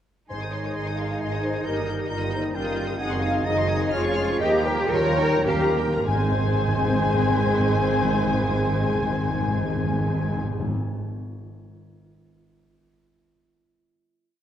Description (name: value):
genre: classical, dramatic, fast romantic movement for symphony orchestra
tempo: 99-137 BPM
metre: 3/4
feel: straight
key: Ab major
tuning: A4 = 440 Hz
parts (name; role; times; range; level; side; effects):
- rich symphonic violin section; melody; 0.3-10.4 s; G5 to G6; -33 LUFS; left 6 dB; none
- clear oboe; second line; 0.3-10.4 s; F5 to Bb5; -35 LUFS; right 1 dB; none
- dark studio violin section; second line; 0.3-10.4 s; Ab4 to Gb5; -33 LUFS; left 1 dB; none
- mellow clarinet; second line; 0.3-10.4 s; C4 to Ab4; -33 LUFS; left 2 dB; none
- mellow flute section; second line; 0.3-10.4 s; Bb4 to Ab5; -31 LUFS; left 1 dB; none
- warm symphonic viola section; accompaniment; 0.3-10.4 s; Eb3 to C5; -32 LUFS; equal; none
- clear trombone section; sustained chords; 0.3-10.4 s; Eb3 to Ab3; -34 LUFS; right 3 dB; none
- warm French horn section; sustained chords; 0.3-10.4 s; Ab3 to Bb4; -31 LUFS; left 2 dB; none
- rich symphonic cello section; bass; 0.3-10.4 s; Ab2 to Bb4; -29 LUFS; right 2 dB; none
- rich symphonic double bass section; bass; 0.3-10.4 s; F1 to Eb2; -29 LUFS; right 3 dB; none
- timpani; percussion; 0.3-0.9, 4.4-10.8 s; Ab2 to Eb3; -28 LUFS; left 1 dB; none
room: wet scoring stage reverb, RT60 2.0 s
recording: worn, warbling old tape, cassette tape, warbly pitch drift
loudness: -21 LUFS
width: side -10 dB against mid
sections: 0.3-6.1 A section; 6.1-9.6 final chord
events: slowing down 2.3-6.1; timpani fill 4.4-6.1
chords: 0.3 Ab; 1.7 Eb/G; 3.0 Ab7/Gb; 3.9 Db/F; 4.4 Eb9; 6.1 Ab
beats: | 0.31 0.76 1.21 | 1.66 2.10 2.55 | 2.99 3.45 3.92 | 4.41 4.92 5.47 | 6.07 6.67 7.26 | 7.86 8.46 9.05